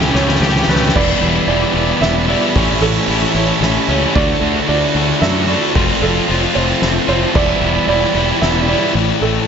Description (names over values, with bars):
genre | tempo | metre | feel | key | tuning
post-rock | 113 BPM | 3/4 | straight | E dorian | A4 = 439 Hz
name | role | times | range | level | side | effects
icy glass pad | sustained chords | 0.0-9.5 s | E4 to D6 | -27 LUFS | left 1 dB | chorus, built-in reverb
felt-muted upright piano | arpeggios | 0.0-9.5 s | A4 to E5 | -21 LUFS | right 6 dB | tape echo
twangy electric guitar | arpeggios | 0.0-1.0 s | C#3 to G4 | -24 LUFS | left 2 dB | spring reverb, tape echo
distorted electric guitar | riff | 0.0-8.9 s | A2 to G4 | -19 LUFS | right 11 dB | overdrive
sludgy distorted guitar | riff | 0.0-9.5 s | A2 to G4 | -18 LUFS | left 11 dB | overdrive
growling fingered electric bass | bass | 0.0-9.4 s | E1 to F#2 | -20 LUFS | equal | overdrive
soft-mallet drum kit | drums | 0.0-8.8 s | crash cymbal, kick drum, ride cymbal, snare drum | -19 LUFS | equal | none
room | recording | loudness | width
light reverb | nothing above 7.7 kHz | -12 LUFS | side -7 dB against mid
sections
0.9-9.5 A section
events
drum fill 0.0-0.9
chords
0.0 A7/C#; 0.9 Em7; 2.5 A7; 4.1 D6; 5.7 Fmaj7; 7.3 Em7; 8.9 A7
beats
0.41 | 0.95 1.48 2.02 | 2.55 3.08 3.61 | 4.15 4.68 5.21 | 5.75 6.28 6.81 | 7.34 7.88 8.41 | 8.94